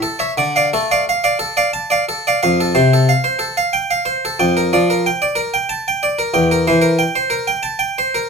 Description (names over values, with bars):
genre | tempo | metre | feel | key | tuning
classical, baroque-style suite movement for harpsichord | 91 BPM | 3/4 | rubato | F major | A4 = 441 Hz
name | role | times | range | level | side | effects
harpsichord | solo | 0.0-8.3 s | E2 to A5 | -14 LUFS | equal | none
room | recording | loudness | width
moderate studio reverb, RT60 0.7 s | minimal, uncompressed stereo recording | -14 LUFS | side -5 dB against mid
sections
0.0-2.4 A section; 2.4-8.3 A section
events
none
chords
0.4 Dm; 2.4 F; 4.4 Gm7/F; 6.4 C7/E